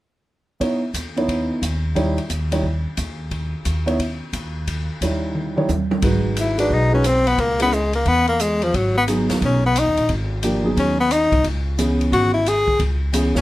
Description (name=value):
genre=jazz, small-group swing and bop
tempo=177 BPM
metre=4/4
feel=swing 65% on 8ths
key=G# minor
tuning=A4 = 440 Hz
part: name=warm baby grand piano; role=accompaniment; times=0.6-13.4 s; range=E3 to C#5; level=-22 LUFS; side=right 1 dB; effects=none
part: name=open jazz drum kit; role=drums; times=0.6-13.4 s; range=hi-hat, kick drum, ride cymbal, snare drum, toms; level=-27 LUFS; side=equal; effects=none
part: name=upright bass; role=bass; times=0.9-13.4 s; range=G#1 to E2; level=-22 LUFS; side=equal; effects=none
part: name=bright tenor saxophone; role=melody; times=6.4-13.4 s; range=E#3 to G#4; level=-18 LUFS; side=left 2 dB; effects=none
room=light reverb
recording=none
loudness=-17 LUFS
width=side -16 dB against mid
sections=0.6-6.0 A section; 6.0-13.4 B section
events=drum fill 5.4-6.0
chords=0.6 C#m9; 2.0 D#7b9; 3.3 N.C.; 4.7 D#7b9; 6.0 G#m7; 7.4 C#m7; 8.7 G#m7; 11.4 C#m7